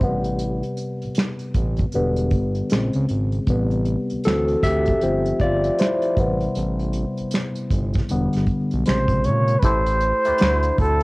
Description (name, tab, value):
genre	R&B, neo-soul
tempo	78 BPM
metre	4/4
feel	swing 62% on 16ths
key	A minor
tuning	A4 = 438 Hz
part	barky tine electric piano	accompaniment	0.0-11.0 s	C3 to E5	-22 LUFS	left 1 dB	overdrive, phaser, cassette tape
part	smooth synth bass	bass	0.0-11.0 s	E1 to Bb2	-23 LUFS	equal	none
part	unplugged drum kit	drums	0.0-11.0 s	finger snaps, hi-hat, kick drum, snare drum	-23 LUFS	equal	none
part	breathy flugelhorn	melody	8.9-11.0 s	A4 to Db5	-20 LUFS	right 1 dB	cassette tape
room	studio reverb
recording	home recording on cassette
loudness	-18 LUFS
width	side -23 dB against mid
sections	0.0-9.6 A section; 9.6-11.0 B section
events	tine electric piano solo 0.0-9.6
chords	0.0 Am9; 1.9 Em7; 2.7 Bbm9; 3.5 Am9; 4.2 D7; 5.0 G7sus4; 6.2 Am9; 8.1 Em7; 8.9 Bbm9; 9.6 Am9; 10.4 D7